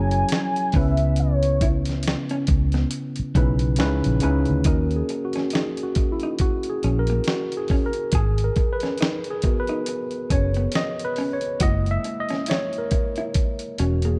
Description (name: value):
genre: R&B, neo-soul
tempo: 69 BPM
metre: 4/4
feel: swing 59% on 16ths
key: unclear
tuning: A4 = 440 Hz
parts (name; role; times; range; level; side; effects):
- warm velvety synth lead; melody; 0.0-2.1 s; C#5 to G#5; -28 LUFS; equal; chorus, slapback echo
- vintage hollow-body jazz guitar; second line; 0.0-14.2 s; A#3 to G#4; -34 LUFS; equal; none
- barky tine electric piano; accompaniment; 0.0-14.2 s; C#3 to E5; -28 LUFS; equal; none
- vintage muted fingered electric bass; bass; 0.0-14.1 s; E1 to D#2; -24 LUFS; equal; none
- dusty soul sampler-style drum kit; drums; 0.1-14.2 s; hi-hat, kick drum, snare drum; -26 LUFS; equal; none
room: light reverb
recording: dark, warm production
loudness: -23 LUFS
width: mono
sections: 0.0-4.7 A section; 4.7-14.2 B section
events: tine electric piano solo 4.7-14.2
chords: 0.0 F#9; 0.7 C#m9; 4.7 D#m7 (rootless); 8.1 G#m9; 11.6 F#9